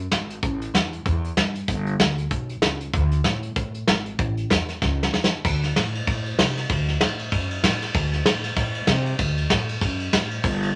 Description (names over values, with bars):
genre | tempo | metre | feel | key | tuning
rockabilly | 192 BPM | 4/4 | swing 58% on 8ths | unclear | A4 = 440 Hz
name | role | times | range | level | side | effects
upright bass | bass | 0.0-10.7 s | G1 to C3 | -28 LUFS | equal | none
vintage brush drum kit | drums | 0.1-10.7 s | crash cymbal, hi-hat, kick drum, ride cymbal, snare drum | -24 LUFS | equal | none
room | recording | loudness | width
moderate studio reverb, RT60 0.6 s | none | -23 LUFS | mono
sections
0.0-5.4 A section; 5.4-10.8 A section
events
drum fill 4.8-5.4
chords
none